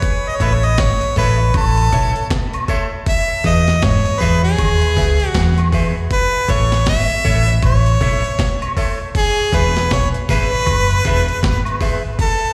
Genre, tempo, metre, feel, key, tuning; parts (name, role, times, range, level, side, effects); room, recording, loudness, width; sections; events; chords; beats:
roots reggae; 79 BPM; 4/4; swing 61% on 16ths; E major; A4 = 445 Hz
clear harmonica; melody; 0.0-12.5 s; G#4 to E5; -21 LUFS; equal; dub echo, slapback echo
breakbeat sampler-style drum kit; drums; 0.0-12.4 s; hi-hat, kick drum, snare drum; -22 LUFS; equal
clean electric guitar; accompaniment; 0.4-12.0 s; G#4 to E5; -29 LUFS; equal; spring reverb, dub echo, slapback echo
hollow-body short-scale fingered electric bass; bass; 0.4-12.0 s; E1 to G#2; -19 LUFS; equal
tambourine and woodblock; percussion; 0.4-12.0 s; -31 LUFS; equal; slapback echo
light reverb; live gig heard through the venue's PA, recital hall reverb; -16 LUFS; mono
0.0-12.5 A section
0.0 A; 3.1 E; 6.1 A; 9.1 E
| 0.03 0.79 1.55 2.31 | 3.07 3.83 4.59 5.35 | 6.11 6.87 7.63 8.39 | 9.15 9.91 10.67 11.43 | 12.19